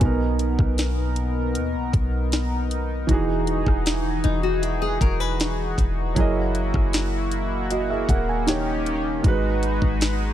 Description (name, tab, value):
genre	contemporary R&B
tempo	78 BPM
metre	4/4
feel	straight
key	unclear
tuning	A4 = 440 Hz
part	warm concert grand piano	accompaniment	0.0-10.3 s	B2 to G#5	-27 LUFS	right 4 dB	none
part	chorused pulse-width pad	sustained chords	0.0-10.3 s	D#3 to B4	-28 LUFS	left 1 dB	none
part	clean 808-style bass	bass	0.0-10.3 s	D#1 to D#2	-25 LUFS	equal	none
part	smooth R&B drum kit	drums	0.0-10.2 s	hi-hat, kick drum, rim click, snare drum	-23 LUFS	equal	vintage 12-bit sampler grit
part	nylon-string guitar	arpeggios	4.2-6.1 s	D#4 to B4	-28 LUFS	left 8 dB	ping-pong delay
room	little or no reverb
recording	none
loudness	-20 LUFS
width	side -11 dB against mid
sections	0.0-10.3 A section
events	none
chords	0.0 Bmaj7; 3.1 Emaj9; 6.2 F#13; 8.5 D#7; 9.2 G#m7